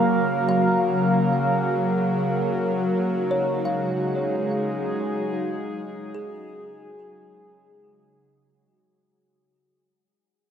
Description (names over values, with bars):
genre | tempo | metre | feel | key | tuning
ambient | free time | none | none | unclear | A4 = 440 Hz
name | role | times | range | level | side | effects
warbly tape-like pad | sustained chords | 0.0-9.0 s | C#3 to E#5 | -24 LUFS | equal | chorus, built-in reverb, phaser
bowed-like drone | drone | 0.0-9.1 s | F#3 to F#4 | -27 LUFS | equal | built-in reverb
kalimba | arpeggios | 0.5-7.4 s | G#4 to E#5 | -31 LUFS | left 1 dB | diffuse ambient delay
room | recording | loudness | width
wet huge ambient reverb, RT60 7.1 s | none | -21 LUFS | side -8 dB against mid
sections
0.0-9.0 A section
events
fade-out 0.0-9.0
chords
0.0 F#maj7; 2.2 C#add9